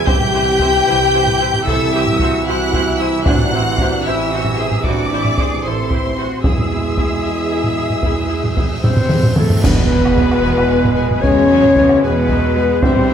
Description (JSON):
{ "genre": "cinematic, epic orchestral film score", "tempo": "75 BPM (dotted quarters)", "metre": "12/8", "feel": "straight", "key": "E mixolydian", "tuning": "A4 = 439 Hz", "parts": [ { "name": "rich chamber violin section", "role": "melody", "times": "0.0-13.1 s", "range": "E5 to G6", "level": "-24 LUFS", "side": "equal", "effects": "none" }, { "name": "rich symphonic violin section", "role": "second line", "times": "0.0-13.1 s", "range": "A4 to G5", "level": "-23 LUFS", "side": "left 4 dB", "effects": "none" }, { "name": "clear trombone section", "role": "sustained chords", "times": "0.0-13.1 s", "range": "B2 to G#3", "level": "-25 LUFS", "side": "right 4 dB", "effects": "none" }, { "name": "mellow French horn section", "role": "sustained chords", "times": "0.0-13.1 s", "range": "A3 to G4", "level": "-18 LUFS", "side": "left 2 dB", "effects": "none" }, { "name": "rich symphonic cello section", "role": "bass", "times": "0.0-13.1 s", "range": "A2 to A4", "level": "-24 LUFS", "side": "right 1 dB", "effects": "none" }, { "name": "rich symphonic viola section", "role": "accompaniment", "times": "0.1-13.1 s", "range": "E3 to C5", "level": "-26 LUFS", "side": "right 1 dB", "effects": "none" }, { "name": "rich symphonic double bass section", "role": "bass", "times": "0.1-13.1 s", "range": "A1 to E2", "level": "-22 LUFS", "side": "right 4 dB", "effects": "none" }, { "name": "solo taiko drums", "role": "drums", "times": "0.1-13.1 s", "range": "none", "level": "-18 LUFS", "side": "equal", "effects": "none" }, { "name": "cymbal swell, clash cymbals and concert bass drum", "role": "percussion", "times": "6.4-10.7 s", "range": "none", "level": "-25 LUFS", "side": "equal", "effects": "none" }, { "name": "cymbal swell and sub drop", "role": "sound effects", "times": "8.3-12.8 s", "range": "none", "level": "-28 LUFS", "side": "equal", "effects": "none" }, { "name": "hollow concert flute", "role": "second line", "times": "8.8-13.1 s", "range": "A4 to C#5", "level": "-21 LUFS", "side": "left 2 dB", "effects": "none" } ], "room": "moderate scoring stage reverb, RT60 1.6 s", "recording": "none", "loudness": "-13 LUFS", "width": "side -8 dB against mid", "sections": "0.0-9.6 A section; 9.6-13.1 B section", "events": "cymbal swell 8.3-9.6; drum fill 8.8-9.6; band accent 9.6-10.2; impact 9.6-12.8", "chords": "0.1 C; 3.3 Am; 6.4 E" }